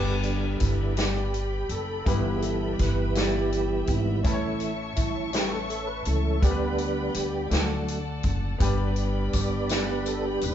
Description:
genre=slow gospel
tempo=55 BPM (dotted quarters)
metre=6/8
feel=straight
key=G major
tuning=A4 = 440 Hz
part: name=clear baby grand piano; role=accompaniment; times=0.0-10.5 s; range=G2 to D5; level=-34 LUFS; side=left 3 dB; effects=none
part: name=tonewheel organ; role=sustained chords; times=0.0-10.5 s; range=D3 to D5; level=-29 LUFS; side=right 2 dB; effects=slow rotary speaker, overdrive, chorus vibrato
part: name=warm studio string section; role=sustained chords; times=0.0-10.5 s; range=A4 to C#6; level=-37 LUFS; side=equal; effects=none
part: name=upright bass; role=bass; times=0.0-10.5 s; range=Eb1 to D2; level=-28 LUFS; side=equal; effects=none
part: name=swinging big-band drum kit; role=drums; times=0.2-10.5 s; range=hi-hat, kick drum, snare drum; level=-29 LUFS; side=equal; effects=none
part: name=tambourine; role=percussion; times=9.3-10.5 s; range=none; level=-38 LUFS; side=left 7 dB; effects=none
room=moderate large studio reverb, RT60 1.0 s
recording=band playing live in one room, nothing above 7.7 kHz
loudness=-24 LUFS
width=side -10 dB against mid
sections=0.0-10.5 A section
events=tonewheel organ solo 0.0-10.5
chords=0.0 G; 2.1 Em/G; 4.2 A; 6.4 G/D; 7.5 D; 8.6 G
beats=0.97 | 2.06 3.15 | 4.25 5.33 | 6.43 7.52 | 8.61 9.70

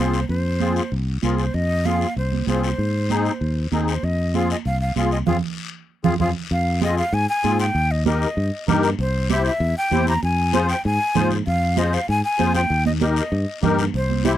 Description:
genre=latin, cumbia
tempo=194 BPM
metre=4/4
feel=straight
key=F minor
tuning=A4 = 440 Hz
part: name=breathy jazz flute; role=melody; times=0.0-14.3 s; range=Bb4 to Bb5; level=-24 LUFS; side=equal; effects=none
part: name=musette accordion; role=accompaniment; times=0.0-14.4 s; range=C4 to C5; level=-22 LUFS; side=left 4 dB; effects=none
part: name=fingered electric bass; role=bass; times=0.0-14.4 s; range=C2 to Ab2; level=-22 LUFS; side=equal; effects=none
part: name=guiro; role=percussion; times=0.1-14.4 s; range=none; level=-35 LUFS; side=left 10 dB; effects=none
part: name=congas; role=percussion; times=0.6-14.4 s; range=none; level=-25 LUFS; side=right 10 dB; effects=none
room=little or no reverb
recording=dry, close 1970s-style studio recording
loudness=-18 LUFS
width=side -12 dB against mid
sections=0.0-6.5 A section; 6.5-14.4 B section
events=band accent 5.3-6.5; drum fill 5.7-6.5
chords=0.0 Fm; 2.8 Ab; 4.0 Fm; 7.8 Eb; 9.0 C; 10.2 Fm; 12.7 Eb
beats=| 0.30 0.61 0.92 1.23 | 1.54 1.85 2.16 2.48 | 2.79 3.10 3.41 3.72 | 4.03 4.34 4.65 4.96 | 5.27 5.58 5.89 6.21 | 6.52 6.83 7.13 7.45 | 7.75 8.06 8.37 8.68 | 8.99 9.30 9.61 9.92 | 10.23 10.54 10.85 11.16 | 11.47 11.78 12.09 12.39 | 12.70 13.01 13.32 13.63 | 13.94 14.25

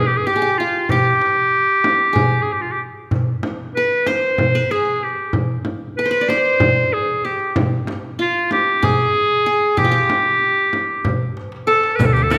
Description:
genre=Turkish makam ensemble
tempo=189 BPM (eighths)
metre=7/8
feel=straight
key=G makam hicaz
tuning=A4 = 439 Hz
part: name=bright clarinet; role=melody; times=0.0-12.4 s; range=F4 to C5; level=-19 LUFS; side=equal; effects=none
part: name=qanun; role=second line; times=0.0-12.4 s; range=F4 to D5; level=-28 LUFS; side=equal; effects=none
part: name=darbuka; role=percussion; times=0.9-12.4 s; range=none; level=-26 LUFS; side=equal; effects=none
part: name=frame drum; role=percussion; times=0.9-12.4 s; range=none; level=-26 LUFS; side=equal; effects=none
part: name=rich double bass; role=drone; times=12.0-12.4 s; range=D2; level=-25 LUFS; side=equal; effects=none
part: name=riq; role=percussion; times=12.0-12.4 s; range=none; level=-32 LUFS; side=equal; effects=none
room=wet recital hall reverb, RT60 1.6 s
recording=none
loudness=-18 LUFS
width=mono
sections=0.0-12.0 A section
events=drum fill 11.4-12.0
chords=none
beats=0.27 0.58 | 0.90 1.22 1.53 1.85 2.17 2.48 2.80 | 3.12 3.44 3.75 4.07 4.39 4.70 5.02 | 5.34 5.66 5.97 6.29 6.61 6.92 7.24 | 7.56 7.87 8.19 8.51 8.82 9.14 9.46 | 9.77 10.09 10.41 10.72 11.04 11.36 11.68 | 11.99 12.31

